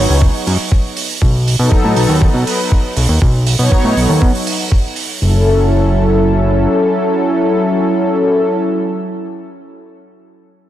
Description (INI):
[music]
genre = nu-disco, nu disco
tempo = 120 BPM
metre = 4/4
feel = straight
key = F# dorian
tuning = A4 = 442 Hz
[part]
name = warm analog pad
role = accompaniment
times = 0.0-8.6 s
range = F#3 to C#5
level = -15 LUFS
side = equal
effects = chorus, sidechain pumping, analog delay
[part]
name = fat analog bass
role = bass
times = 0.0-6.7 s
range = F#1 to B2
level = -13 LUFS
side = equal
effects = sidechain pumping
[part]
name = electronic kick drum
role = drums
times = 0.2-4.8 s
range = none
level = -12 LUFS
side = equal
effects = studio reverb
[part]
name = hi-hat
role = drums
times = 0.5-5.1 s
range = none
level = -22 LUFS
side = right 6 dB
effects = studio reverb
[sound]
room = moderate plate reverb, RT60 2.6 s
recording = dreamy mix soaked in reverb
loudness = -11 LUFS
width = side -12 dB against mid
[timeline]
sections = 0.0-5.2 A section; 5.2-9.2 B section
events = none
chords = 0.0 N.C.; 1.2 B7; 5.2 F#m7